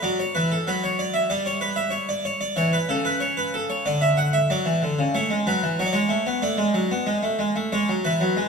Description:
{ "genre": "classical, baroque-style two-part invention for harpsichord", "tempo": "94 BPM", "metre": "4/4", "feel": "straight", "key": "D major", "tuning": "A4 = 440 Hz", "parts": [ { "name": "harpsichord", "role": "solo", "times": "0.0-8.5 s", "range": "C#3 to F#5", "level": "-21 LUFS", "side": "equal", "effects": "none" } ], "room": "wet recital hall reverb, RT60 1.6 s", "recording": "lossy compression artefacts", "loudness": "-21 LUFS", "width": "side -5 dB against mid", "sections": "0.0-8.5 A section", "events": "none", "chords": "0.0 D; 1.3 Em7/G; 2.6 A; 3.9 D; 5.1 A; 6.4 Bm7 (rootless); 7.7 E", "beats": "| 0.01 0.65 1.29 1.93 | 2.57 3.21 3.86 4.50 | 5.14 5.78 6.42 7.07 | 7.71 8.36" }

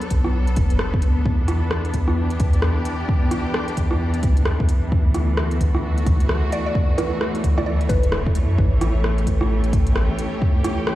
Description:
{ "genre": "future garage", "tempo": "131 BPM", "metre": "4/4", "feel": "swing 61% on 16ths", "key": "unclear", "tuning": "A4 = 439 Hz", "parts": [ { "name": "rich studio string section", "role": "sustained chords", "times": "0.0-11.0 s", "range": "E3 to D5", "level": "-26 LUFS", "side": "equal", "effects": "sidechain pumping" }, { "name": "organic electronic drum kit", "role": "drums", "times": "0.0-11.0 s", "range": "hi-hat, rim click", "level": "-26 LUFS", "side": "equal", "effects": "none" }, { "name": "wind-like tuned noise texture", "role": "texture", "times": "0.0-11.0 s", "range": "B3 to B4", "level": "-34 LUFS", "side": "left 1 dB", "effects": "built-in reverb" }, { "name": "soft dub sub bass", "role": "bass", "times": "0.1-10.1 s", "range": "D1 to F#2", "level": "-20 LUFS", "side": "equal", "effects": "none" }, { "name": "electronic kick drum", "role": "drums", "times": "0.1-10.5 s", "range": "none", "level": "-20 LUFS", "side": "equal", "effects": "none" }, { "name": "mallet-like synth pluck", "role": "melody", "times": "6.5-8.3 s", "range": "B4 to D5", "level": "-28 LUFS", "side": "left 1 dB", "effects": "chorus, phaser, analog delay" } ], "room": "light reverb", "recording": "played on a big sound system in a bare room, large studio reverb", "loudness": "-18 LUFS", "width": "side -15 dB against mid", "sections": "0.0-11.0 A section", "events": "none", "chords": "0.0 Bm9; 1.3 Em7; 4.9 Dmaj9; 8.6 A7", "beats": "0.34 0.80 | 1.26 1.71 2.17 2.63 | 3.09 3.55 4.00 4.46 | 4.92 5.38 5.84 6.29 | 6.75 7.21 7.67 8.13 | 8.58 9.04 9.50 9.96 | 10.42 10.87" }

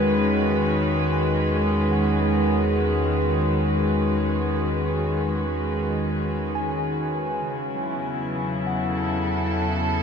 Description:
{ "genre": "ambient", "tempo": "free time", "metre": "none", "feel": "none", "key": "E major", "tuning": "A4 = 439 Hz", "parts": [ { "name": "rich chamber string section", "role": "sustained chords", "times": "0.0-10.0 s", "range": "C#3 to B4", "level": "-22 LUFS", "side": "equal", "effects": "low-pass filter, shimmer reverb" }, { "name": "tine electric piano", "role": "arpeggios", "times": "0.0-10.0 s", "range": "F#5 to G#5", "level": "-34 LUFS", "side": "left 2 dB", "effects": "fast stereo tremolo, diffuse ambient delay, shimmer reverb" }, { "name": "round analog bass", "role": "bass", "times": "0.0-10.0 s", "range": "E2", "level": "-28 LUFS", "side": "left 1 dB", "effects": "none" } ], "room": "wet huge ambient reverb, RT60 7.6 s", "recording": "dark, warm production", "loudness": "-21 LUFS", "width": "side -6 dB against mid", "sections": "0.0-10.0 A section", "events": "fade-in on tine electric piano 0.0-10.0", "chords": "0.0 Eadd9; 7.5 F#madd9/E", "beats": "free time" }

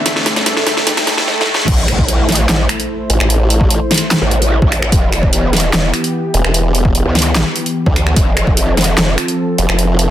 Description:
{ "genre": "heavy wobble dubstep", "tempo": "148 BPM", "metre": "4/4", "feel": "half-time", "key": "A minor", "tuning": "A4 = 440 Hz", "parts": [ { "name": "lush unison pad", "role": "sustained chords", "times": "0.0-10.1 s", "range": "G2 to C5", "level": "-20 LUFS", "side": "equal", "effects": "chorus, sidechain pumping" }, { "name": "riser, swell and impact", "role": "sound effects", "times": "0.0-3.3 s", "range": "none", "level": "-22 LUFS", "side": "right 1 dB", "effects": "none" }, { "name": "warbly tape-like pad", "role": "texture", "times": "0.0-1.3 s", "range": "D4 to A5", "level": "-23 LUFS", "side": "left 1 dB", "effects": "chorus, built-in reverb, sidechain pumping" }, { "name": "dubstep drum kit", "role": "drums", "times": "0.1-10.1 s", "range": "crash cymbal, finger snaps, handclaps, hi-hat, snare drum", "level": "-15 LUFS", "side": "equal", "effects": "overdrive, high-pass filter on snare, high-pass filter on hats, high-pass filter on cymbals, high-pass filter on room" }, { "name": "growl bass", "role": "bass", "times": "1.7-9.2 s", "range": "E1 to D2", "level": "-15 LUFS", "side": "equal", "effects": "chorus, overdrive" }, { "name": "electronic kick drum", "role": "drums", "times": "1.7-8.6 s", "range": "none", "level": "-14 LUFS", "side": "equal", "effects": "overdrive" }, { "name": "formant-sweep wobble bass", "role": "bass", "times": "3.1-3.8, 6.3-10.1 s", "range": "E1 to D2", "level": "-13 LUFS", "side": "equal", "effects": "chorus, overdrive" } ], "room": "light reverb", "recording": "dense, heavily limited modern master, high-pass filter", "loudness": "-11 LUFS", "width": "side -12 dB against mid", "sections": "0.0-1.7 A section; 1.7-10.1 B section", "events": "build-up 0.0-1.7; drum fill 0.0-1.3, 1.3-1.7; riser 0.0-1.3; swell 0.9-1.7; drop 1.7-10.1; impact 1.7-3.3", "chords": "0.1 Gsus2; 1.7 Am; 4.9 Em; 8.2 F", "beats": "| 0.06 0.46 0.87 1.27 | 1.68 2.08 2.49 2.90 | 3.30 3.71 4.11 4.52 | 4.92 5.33 5.73 6.14 | 6.54 6.95 7.35 7.76 | 8.16 8.57 8.98 9.38 | 9.79" }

